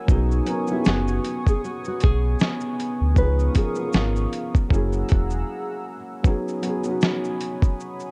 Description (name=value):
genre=lo-fi hip hop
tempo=78 BPM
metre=4/4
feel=swing 58% on 16ths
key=B major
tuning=A4 = 439 Hz
part: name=felt-muted upright piano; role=accompaniment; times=0.0-8.1 s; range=E#3 to A#4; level=-30 LUFS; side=equal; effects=cassette tape, low-pass filter
part: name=warm analog pad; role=sustained chords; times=0.0-8.1 s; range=B3 to E6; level=-35 LUFS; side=equal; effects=chorus, low-pass filter
part: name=nylon-string guitar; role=melody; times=0.1-4.9 s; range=D#4 to B4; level=-33 LUFS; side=equal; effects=low-pass filter, tape echo
part: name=sub bass with octave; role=bass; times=0.1-5.4 s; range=E1 to D2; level=-25 LUFS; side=equal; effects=none
part: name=dusty soul sampler-style drum kit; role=drums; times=0.1-8.1 s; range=hi-hat, kick drum, shaker, snare drum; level=-22 LUFS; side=equal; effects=overdrive, vintage 12-bit sampler grit
room=digital ambience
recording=dark, warm production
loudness=-23 LUFS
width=mono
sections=0.0-8.1 A section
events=break 5.5-6.2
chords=0.1 B69; 3.2 C#9; 4.7 F#9; 6.2 B69